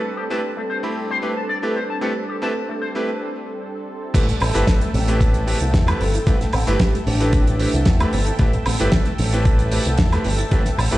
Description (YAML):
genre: nu-disco, nu disco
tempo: 113 BPM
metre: 4/4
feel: straight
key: A minor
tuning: A4 = 440 Hz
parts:
  - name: lush unison pad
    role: sustained chords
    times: 0.0-11.0 s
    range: G3 to A5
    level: -28 LUFS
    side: right 1 dB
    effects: chorus, sidechain pumping
  - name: electric guitar with an envelope filter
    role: riff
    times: 0.2-2.9 s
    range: A3 to A5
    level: -28 LUFS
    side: left 4 dB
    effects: lush chorus, low-pass filter, tape echo
  - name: bright electric grand piano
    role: accompaniment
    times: 0.3-11.0 s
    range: A3 to B5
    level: -25 LUFS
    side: equal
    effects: sidechain pumping, tape echo
  - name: soft round pluck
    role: arpeggios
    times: 4.1-11.0 s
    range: G3 to E4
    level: -30 LUFS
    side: right 1 dB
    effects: chorus, sidechain pumping, tape echo
  - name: picked electric bass with an envelope filter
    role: bass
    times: 4.1-11.0 s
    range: G1 to E2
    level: -20 LUFS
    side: equal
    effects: none
  - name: damped 70s drum kit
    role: drums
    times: 4.1-11.0 s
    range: crash cymbal, hi-hat, snare drum, woodblock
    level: -25 LUFS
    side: right 1 dB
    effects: none
  - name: electronic kick drum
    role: drums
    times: 4.1-10.6 s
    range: none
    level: -18 LUFS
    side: equal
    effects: none
  - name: vibraphone with medium mallets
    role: melody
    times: 6.0-7.9 s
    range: D4 to A4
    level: -28 LUFS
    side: equal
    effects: tape echo
room: light reverb, small room ambience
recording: played on a big sound system in a bare room, stone room reverb, nothing above 10.5 kHz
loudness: -17 LUFS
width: side -16 dB against mid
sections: 0.0-4.1 A section; 4.1-11.0 B section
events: break 3.1-4.1; drop 4.1-11.0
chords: 0.0 Am7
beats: 0.43 0.96 1.49 | 2.02 2.55 3.08 3.62 | 4.15 4.68 5.21 5.74 | 6.27 6.80 7.33 7.86 | 8.39 8.93 9.46 9.99 | 10.52